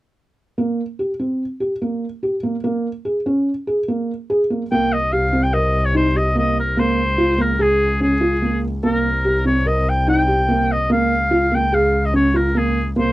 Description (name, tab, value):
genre	contemporary instrumental, chamber music in an uneven meter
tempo	145 BPM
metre	5/4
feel	straight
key	unclear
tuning	A4 = 439 Hz
part	felt-muted upright piano	arpeggios	0.6-13.1 s	Bb3 to Bb4	-19 LUFS	right 1 dB	none
part	clear oboe	melody	4.7-13.1 s	Ab4 to G5	-20 LUFS	left 1 dB	none
part	dark double bass	bass	4.7-13.1 s	C2 to Db2	-21 LUFS	left 1 dB	none
room	light reverb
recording	worn, warbling old tape, cassette tape, warbly pitch drift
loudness	-16 LUFS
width	side -17 dB against mid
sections	0.6-4.7 A section; 4.7-13.1 B section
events	none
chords	0.6 C5; 2.6 Bbm7; 4.7 Cm7; 6.8 Bbm7/Db; 8.8 Cm7; 10.9 Bbm/Db